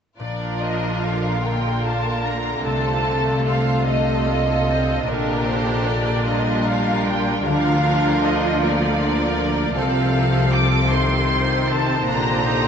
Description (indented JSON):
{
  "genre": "classical, slow romantic movement for symphony orchestra",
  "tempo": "47-54 BPM (dotted quarters)",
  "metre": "6/8",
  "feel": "rubato",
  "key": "Bb major",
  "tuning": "A4 = 441 Hz",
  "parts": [
    { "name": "rich symphonic violin section", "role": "melody", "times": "0.2-12.7 s", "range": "Bb4 to D6", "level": "-24 LUFS", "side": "right 1 dB", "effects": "none" },
    { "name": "warm symphonic violin section", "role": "second line", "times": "0.2-12.7 s", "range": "F4 to C5", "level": "-26 LUFS", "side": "left 1 dB", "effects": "none" },
    { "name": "bright studio viola section", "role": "accompaniment", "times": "0.2-12.7 s", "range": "D3 to Eb4", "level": "-24 LUFS", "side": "right 2 dB", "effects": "none" },
    { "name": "concert harp", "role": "arpeggios", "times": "0.2-12.7 s", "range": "Bb2 to Bb4", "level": "-25 LUFS", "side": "left 2 dB", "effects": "none" },
    { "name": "clear symphonic double bass section", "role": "bass", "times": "0.2-12.7 s", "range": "Bb1 to D2", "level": "-26 LUFS", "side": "equal", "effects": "none" },
    { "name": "warm chamber cello section", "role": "bass", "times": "0.2-12.7 s", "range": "Bb2 to D3", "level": "-27 LUFS", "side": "left 1 dB", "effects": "none" }
  ],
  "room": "wet cathedral reverb, RT60 5.8 s",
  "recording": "in a vast, echoing space, nothing above 8.0 kHz",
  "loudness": "-18 LUFS",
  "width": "side -7 dB against mid",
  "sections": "0.2-12.7 A section",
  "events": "none",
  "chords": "0.2 Bb; 2.7 F7/C; 5.1 Bb; 7.5 Bb/D; 9.8 F7/C; 12.1 Bb"
}